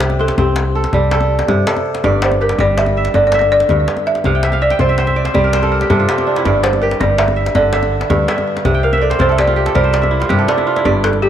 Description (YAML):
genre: west african traditional, West African string and xylophone music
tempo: 109 BPM (dotted quarters)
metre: 12/8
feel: straight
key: unclear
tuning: A4 = 441 Hz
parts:
  - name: balafon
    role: melody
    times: 0.0-11.3 s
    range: G4 to E5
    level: -18 LUFS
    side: equal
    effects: ping-pong delay
  - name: kora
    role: arpeggios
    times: 0.0-11.3 s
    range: G2 to G5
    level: -16 LUFS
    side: right 2 dB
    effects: ping-pong delay
  - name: hollow-body short-scale fingered electric bass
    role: bass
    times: 0.0-11.3 s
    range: G1 to G2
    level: -17 LUFS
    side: left 1 dB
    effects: none
  - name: djembe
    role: percussion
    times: 0.0-11.2 s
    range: none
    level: -21 LUFS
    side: left 3 dB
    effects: none
room: moderate plate reverb, RT60 2.8 s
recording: dreamy mix soaked in reverb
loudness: -12 LUFS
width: side -10 dB against mid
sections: 0.0-11.3 A section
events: kora fill 4.2-6.5, 8.7-10.9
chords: 0.0 C; 2.0 G5; 4.2 C; 6.5 G5; 8.7 C